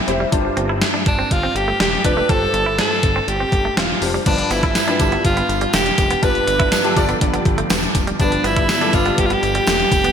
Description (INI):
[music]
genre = 1980s-style pop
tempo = 122 BPM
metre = 4/4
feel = straight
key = unclear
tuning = A4 = 442 Hz
[part]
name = breathy alto saxophone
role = melody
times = 0.0-10.1 s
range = D4 to B4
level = -19 LUFS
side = right 1 dB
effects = none
[part]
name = warm concert grand piano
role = accompaniment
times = 0.0-10.1 s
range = G2 to G5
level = -23 LUFS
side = left 3 dB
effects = ensemble chorus
[part]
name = direct-recorded clean electric guitar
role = riff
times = 0.1-10.1 s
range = G3 to E4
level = -26 LUFS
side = right 4 dB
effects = lush chorus, ping-pong delay
[part]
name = fat analog bass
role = bass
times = 0.1-10.1 s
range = E1 to G1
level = -25 LUFS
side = equal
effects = none
[part]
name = gated 80s digital drum machine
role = drums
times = 0.1-10.1 s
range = crash cymbal, hi-hat, kick drum, snare drum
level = -19 LUFS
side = equal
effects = gated reverb, gated reverb snare, overdrive
[part]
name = glassy FM pad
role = sustained chords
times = 5.2-10.1 s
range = D3 to B3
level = -28 LUFS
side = equal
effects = ensemble chorus, built-in reverb
[part]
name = tambourine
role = percussion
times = 4.3-10.0 s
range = none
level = -34 LUFS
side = right 6 dB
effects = none
[sound]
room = moderate lush hall reverb, RT60 2.0 s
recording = bright 1980s-style digital production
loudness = -15 LUFS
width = side -8 dB against mid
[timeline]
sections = 0.0-4.3 A section; 4.3-10.1 B section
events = grand piano fill 0.0-0.3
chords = 0.3 G7sus4; 4.3 G7